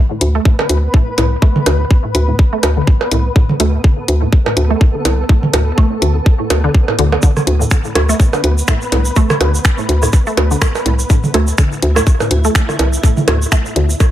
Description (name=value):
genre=minimal techno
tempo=124 BPM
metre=4/4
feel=swing 57% on 16ths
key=unclear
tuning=A4 = 440 Hz
part: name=flickering grainy texture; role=texture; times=0.2-14.1 s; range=B3 to B4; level=-24 LUFS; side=equal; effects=built-in reverb, sidechain pumping
part: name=resonant blip pluck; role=riff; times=0.1-13.8 s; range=A2 to A3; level=-20 LUFS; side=equal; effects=analog chorus, sidechain pumping, analog delay
part: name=hollow knocking FM bass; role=bass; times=0.2-13.9 s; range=C2 to D2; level=-14 LUFS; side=equal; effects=sidechain pumping
part: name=garage drum kit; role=drums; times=0.2-13.9 s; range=finger snaps, hi-hat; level=-20 LUFS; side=left 1 dB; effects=small room reverb, tape echo
part: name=electronic kick drum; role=drums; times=0.5-14.1 s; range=none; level=-11 LUFS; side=equal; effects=small room reverb
part: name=minimal click drum kit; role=percussion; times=0.6-14.1 s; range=percussion blips, rim click, toms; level=-18 LUFS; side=right 3 dB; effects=overdrive, small room reverb, analog delay
part: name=egg shaker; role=percussion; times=7.2-14.1 s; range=none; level=-26 LUFS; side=right 3 dB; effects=tape echo
room=light reverb, digital ambience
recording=echo-heavy mix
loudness=-11 LUFS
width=side -12 dB against mid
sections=0.0-14.1 A section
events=none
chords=0.0 D5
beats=0.45 0.94 | 1.42 1.91 2.39 2.87 | 3.36 3.84 4.33 4.81 | 5.29 5.78 6.26 6.75 | 7.23 7.71 8.20 8.68 | 9.16 9.65 10.13 10.62 | 11.10 11.58 12.07 12.55 | 13.04 13.52 14.00